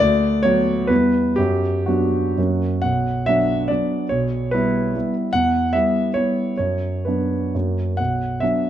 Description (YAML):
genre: classical, romantic triple-time dance for piano with dotted rhythms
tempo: 116-155 BPM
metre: 3/4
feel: rubato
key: B minor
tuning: A4 = 439 Hz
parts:
  - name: warm concert grand piano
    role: solo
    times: 0.0-8.7 s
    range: B1 to F#5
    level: -18 LUFS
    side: equal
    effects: none
room: moderate recital hall reverb, RT60 1.6 s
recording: close, detailed microphones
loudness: -18 LUFS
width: side -11 dB against mid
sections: 0.0-2.8 A section; 2.8-8.7 B section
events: none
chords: 0.0 Bm/D; 0.9 Em; 1.4 Bm/F#; 2.4 F#; 2.8 Bm; 4.1 Em/B; 5.3 Em; 6.6 Bm/F#; 7.5 F#; 8.0 Bm